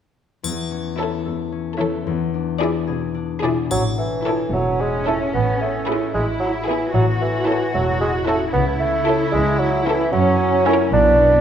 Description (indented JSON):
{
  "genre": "cinematic, playful, whimsical film cue",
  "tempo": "75 BPM (dotted quarters)",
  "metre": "6/8",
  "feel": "straight",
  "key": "A major",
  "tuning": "A4 = 440 Hz",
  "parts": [
    { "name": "concert harp", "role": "arpeggios", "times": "0.4-11.4 s", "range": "E2 to A#4", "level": "-25 LUFS", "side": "left 8 dB", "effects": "none" },
    { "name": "triangle", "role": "percussion", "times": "0.4-4.8 s", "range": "none", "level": "-32 LUFS", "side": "left 4 dB", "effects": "none" },
    { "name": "warm chamber cello section", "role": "bass", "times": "0.5-11.4 s", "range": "E2 to F#4", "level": "-25 LUFS", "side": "right 2 dB", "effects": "none" },
    { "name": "rich chamber violin section", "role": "melody", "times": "1.0-10.9 s", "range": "B4 to D5", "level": "-32 LUFS", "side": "left 3 dB", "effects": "none" },
    { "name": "rich chamber violin section", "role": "second line", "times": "1.0-10.9 s", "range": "G#4 to A#4", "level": "-27 LUFS", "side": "left 1 dB", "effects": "none" },
    { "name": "rich chamber viola section", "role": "accompaniment", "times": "1.0-10.9 s", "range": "E4", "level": "-27 LUFS", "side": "equal", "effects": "none" },
    { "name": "warm bassoon", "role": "accompaniment", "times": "3.7-11.4 s", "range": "E3 to D4", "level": "-19 LUFS", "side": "right 2 dB", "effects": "none" },
    { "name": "rich chamber double bass section", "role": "bass", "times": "3.7-11.4 s", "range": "E1 to F#2", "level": "-24 LUFS", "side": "right 2 dB", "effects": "none" }
  ],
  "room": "moderate scoring stage reverb, RT60 1.6 s",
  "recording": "none",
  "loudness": "-17 LUFS",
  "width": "side -9 dB against mid",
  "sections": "0.4-3.7 A section; 3.7-11.4 B section",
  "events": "none",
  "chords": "0.4 A/E; 2.1 E7; 3.7 A; 5.3 E/A; 6.9 A; 8.5 A/C#; 10.1 F#7"
}